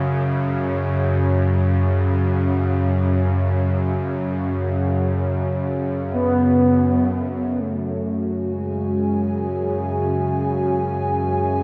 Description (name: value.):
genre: ambient.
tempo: free time.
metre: none.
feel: none.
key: unclear.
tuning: A4 = 439 Hz.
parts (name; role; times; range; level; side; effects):
bowed-like drone; drone; 0.0-11.6 s; F#2 to C#3; -22 LUFS; equal; built-in reverb.
bronze singing bowl; texture; 0.0-11.6 s; G#4 to C#5; -44 LUFS; equal; none.
mellow horn-like synth lead; melody; 6.1-10.8 s; F#3 to B3; -23 LUFS; equal; lush chorus, analog delay.
dark analog pad; sustained chords; 7.8-11.6 s; F#4 to G#5; -26 LUFS; equal; chorus.
room: wet echo chamber reverb, RT60 2.2 s.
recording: echo-heavy mix.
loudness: -21 LUFS.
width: mono.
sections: 0.0-7.6 A section; 7.6-11.6 B section.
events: none.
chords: 0.0 F#sus2.